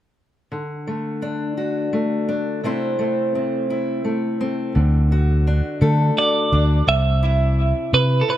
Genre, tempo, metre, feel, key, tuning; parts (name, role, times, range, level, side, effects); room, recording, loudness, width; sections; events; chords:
indie folk with a building arrangement; 57 BPM (dotted quarters); 6/8; straight; A4 = 444 Hz
fingerpicked steel-string acoustic guitar; accompaniment; 0.5-8.4 s; C3 to C5; -22 LUFS; left 1 dB; dub echo
fingered electric bass; bass; 4.8-8.2 s; C2 to D3; -16 LUFS; equal
twelve-string electric guitar; melody; 6.2-8.4 s; A4 to E5; -19 LUFS; right 3 dB; tremolo, dub echo
light reverb, small room ambience; echo-heavy mix; -18 LUFS; side -12 dB against mid
0.5-4.8 A section; 4.8-8.4 B section
0.5 D; 2.6 Am/C; 4.8 D; 6.9 Cmaj7